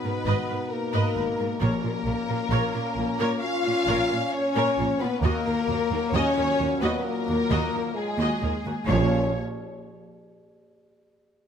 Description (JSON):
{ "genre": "cinematic", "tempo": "66 BPM", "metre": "4/4", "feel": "straight", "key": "Bb phrygian", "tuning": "A4 = 440 Hz", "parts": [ { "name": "warm studio violin section", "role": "melody", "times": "0.0-9.4 s", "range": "Ab4 to F5", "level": "-35 LUFS", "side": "left 4 dB", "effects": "none" }, { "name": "dark symphonic violin section", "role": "second line", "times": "0.0-9.4 s", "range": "Ab4 to F5", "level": "-32 LUFS", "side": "left 3 dB", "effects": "none" }, { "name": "dark symphonic viola section", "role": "accompaniment", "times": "0.0-9.4 s", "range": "Bb3 to Eb5", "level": "-32 LUFS", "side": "equal", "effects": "none" }, { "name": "mellow French horn section", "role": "sustained chords", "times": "0.0-9.3 s", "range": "Ab3 to F4", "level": "-27 LUFS", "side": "left 4 dB", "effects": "none" }, { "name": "warm trombone section", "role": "sustained chords", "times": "0.0-9.3 s", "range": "Bb2 to Eb4", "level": "-34 LUFS", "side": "right 5 dB", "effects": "none" }, { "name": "warm symphonic cello section", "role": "bass", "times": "0.0-9.4 s", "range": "Eb2 to Bb2", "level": "-30 LUFS", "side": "right 2 dB", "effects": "none" }, { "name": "warm symphonic double bass section", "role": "bass", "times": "0.3-9.4 s", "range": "Ab1 to Eb2", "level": "-29 LUFS", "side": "right 3 dB", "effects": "none" }, { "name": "timpani", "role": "percussion", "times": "1.6-2.9, 8.9-9.3 s", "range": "Bb2", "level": "-31 LUFS", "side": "left 1 dB", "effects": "none" } ], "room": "moderate scoring stage reverb, RT60 1.9 s", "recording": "close, detailed microphones", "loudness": "-22 LUFS", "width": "side -8 dB against mid", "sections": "0.0-8.9 A section; 8.9-11.5 B section", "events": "none", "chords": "0.0 Abmadd9; 1.6 Bbm; 5.2 Ebm; 8.9 Bbm" }